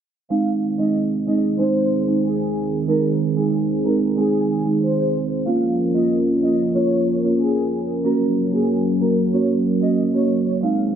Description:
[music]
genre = dancehall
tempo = 93 BPM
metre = 4/4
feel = straight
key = unclear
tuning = A4 = 440 Hz
[part]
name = rich studio violin section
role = melody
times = 0.3-10.8 s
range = Ab4 to F5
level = -26 LUFS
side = left 2 dB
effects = digital delay
[part]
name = marimba with medium mallets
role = accompaniment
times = 0.3-11.0 s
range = Ab3 to Gb4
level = -19 LUFS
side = right 2 dB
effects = none
[part]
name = warm analog pad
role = sustained chords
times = 0.3-11.0 s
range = Eb3 to Bb4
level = -23 LUFS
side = right 1 dB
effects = chorus
[sound]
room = light reverb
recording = low-pass filter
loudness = -17 LUFS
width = side -8 dB against mid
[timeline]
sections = 0.3-11.0 A section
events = none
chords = 0.3 Ab; 5.5 Bbm; 8.0 Gb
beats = | 0.30 0.95 1.59 2.24 | 2.88 3.53 4.18 4.82 | 5.47 6.11 6.76 7.40 | 8.05 8.69 9.34 9.98 | 10.63

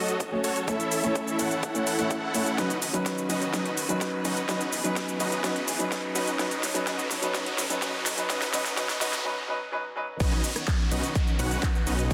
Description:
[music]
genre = EDM, festival progressive house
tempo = 126 BPM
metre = 4/4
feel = straight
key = unclear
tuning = A4 = 440 Hz
[part]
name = clear studio string section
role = sustained chords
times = 0.0-12.1 s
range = D#3 to C#5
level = -39 LUFS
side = equal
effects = sidechain pumping, low-pass filter
[part]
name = supersaw chords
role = riff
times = 0.0-12.1 s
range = C#4 to F#5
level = -33 LUFS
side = equal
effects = sidechain pumping, low-pass filter, tape echo
[part]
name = riser and downlifter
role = sound effects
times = 2.2-12.1 s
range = none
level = -41 LUFS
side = equal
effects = none
[part]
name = big-room dance drum kit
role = drums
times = 0.1-12.1 s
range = crash cymbal, handclaps, hi-hat, rim click, shaker, snare drum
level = -34 LUFS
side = equal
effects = overdrive, high-pass filter on hats, high-pass filter on perc, high-pass filter on snare, high-pass filter on cymbals
[part]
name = electronic kick drum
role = drums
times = 0.2-12.1 s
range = none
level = -31 LUFS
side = equal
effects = overdrive, high-pass filter on kick
[part]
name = dark grand piano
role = accompaniment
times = 0.3-10.0 s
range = F#3 to C#5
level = -33 LUFS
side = equal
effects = sidechain pumping, tape echo
[part]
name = detuned saw bass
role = bass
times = 10.2-12.1 s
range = E1 to B1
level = -32 LUFS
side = equal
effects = sidechain pumping
[sound]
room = moderate lush hall reverb, RT60 2.0 s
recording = dense, heavily limited modern master, high-pass filter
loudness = -28 LUFS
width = mono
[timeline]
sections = 0.0-10.2 A section; 10.2-12.1 B section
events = build-up 0.0-10.2; filter sweep 0.0-10.2; drum fill 2.6-9.2; break 9.2-10.2; drop 10.2-12.1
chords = 0.0 F#m; 0.7 A; 2.6 Badd9; 4.5 E; 6.4 F#m; 8.3 A; 10.2 Badd9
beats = 0.20 | 0.68 1.16 1.63 2.11 | 2.58 3.06 3.54 4.01 | 4.49 4.96 5.44 5.92 | 6.39 6.87 7.35 7.82 | 8.30 8.77 9.25 9.73 | 10.20 10.68 11.15 11.63 | 12.11

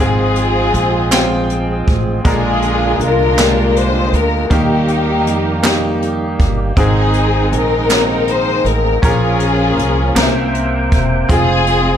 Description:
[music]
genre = slow gospel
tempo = 53 BPM (dotted quarters)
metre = 6/8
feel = straight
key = Ab major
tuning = A4 = 440 Hz
[part]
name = dark studio string section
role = melody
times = 0.0-12.0 s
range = Bb3 to C5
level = -16 LUFS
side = left 2 dB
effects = none
[part]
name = bright concert grand piano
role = accompaniment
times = 0.0-12.0 s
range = Ab2 to G5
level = -19 LUFS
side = left 1 dB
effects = none
[part]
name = tonewheel organ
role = sustained chords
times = 0.0-12.0 s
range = C3 to G5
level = -22 LUFS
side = right 4 dB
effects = slow rotary speaker
[part]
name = upright bass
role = bass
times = 0.0-12.0 s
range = E1 to F2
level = -18 LUFS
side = right 1 dB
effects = none
[part]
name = jazz brush drum kit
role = drums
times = 0.4-11.8 s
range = hi-hat, kick drum, snare drum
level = -17 LUFS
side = equal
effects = none
[part]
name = group handclap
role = percussion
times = 1.1-10.5 s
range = none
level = -19 LUFS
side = right 6 dB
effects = none
[sound]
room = small room ambience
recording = none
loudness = -12 LUFS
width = side -9 dB against mid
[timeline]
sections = 0.0-12.0 A section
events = none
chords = 0.0 Fm/Ab; 2.2 Bb7; 4.5 Eb; 6.8 Ab; 9.0 Bbm; 10.2 C7; 11.3 Fm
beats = 1.11 | 2.24 3.38 | 4.51 5.64 | 6.77 7.90 | 9.03 10.16 | 11.29

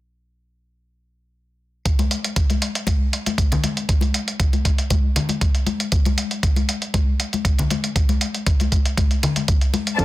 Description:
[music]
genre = nu-disco, nu disco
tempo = 118 BPM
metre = 4/4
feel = straight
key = D minor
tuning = A4 = 439 Hz
[part]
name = electronic hi-hat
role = drums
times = 1.9-10.0 s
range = none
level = -25 LUFS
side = right 1 dB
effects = none
[part]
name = electronic kick drum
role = drums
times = 1.9-10.0 s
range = none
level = -18 LUFS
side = equal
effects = none
[part]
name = congas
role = percussion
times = 2.0-9.8 s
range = none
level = -25 LUFS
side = left 4 dB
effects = none
[part]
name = reed electric piano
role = accompaniment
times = 10.0 s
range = F3 to A4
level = -19 LUFS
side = right 1 dB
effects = overdrive, fast tremolo, sidechain pumping
[part]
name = rich studio string section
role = sustained chords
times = 10.0 s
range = C4 to A5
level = -21 LUFS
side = left 4 dB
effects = sidechain pumping
[sound]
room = little or no reverb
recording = dense, heavily limited modern master, faint mains hum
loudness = -18 LUFS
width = side -17 dB against mid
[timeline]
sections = 1.9-10.0 A section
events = none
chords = none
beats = | 1.86 2.37 2.87 3.38 | 3.89 4.40 4.91 5.42 | 5.92 6.43 6.94 7.45 | 7.96 8.47 8.98 9.48 | 9.99

